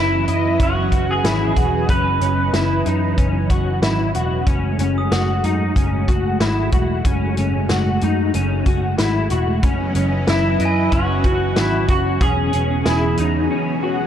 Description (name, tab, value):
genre	dream pop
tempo	93 BPM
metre	4/4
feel	straight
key	F# dorian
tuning	A4 = 439 Hz
part	electric guitar through a small old amp	melody	0.0-2.5, 10.3-14.1 s	E4 to B4	-22 LUFS	right 2 dB	lush chorus, tape echo
part	string machine, cellos	sustained chords	0.0-14.1 s	E3 to D#5	-23 LUFS	right 1 dB	ensemble chorus
part	electric guitar through a small old amp	arpeggios	0.0-14.1 s	C#4 to D#5	-23 LUFS	left 3 dB	ensemble chorus, tape echo
part	vintage muted picked electric bass	bass	0.0-13.5 s	E1 to F#2	-21 LUFS	equal	none
part	vintage drum kit	drums	0.3-13.3 s	hi-hat, kick drum, snare drum	-20 LUFS	equal	none
part	glockenspiel with soft plastic mallets	texture	5.0-6.4, 10.7-12.1 s	G#5 to D#6	-32 LUFS	right 4 dB	tape echo
room	moderate scoring stage reverb, RT60 1.9 s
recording	dark, warm production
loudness	-16 LUFS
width	side -9 dB against mid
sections	0.0-14.1 A section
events	break 13.5-14.1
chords	0.0 C#m7; 4.5 F#madd9; 9.6 C#m7/F#; 12.2 E6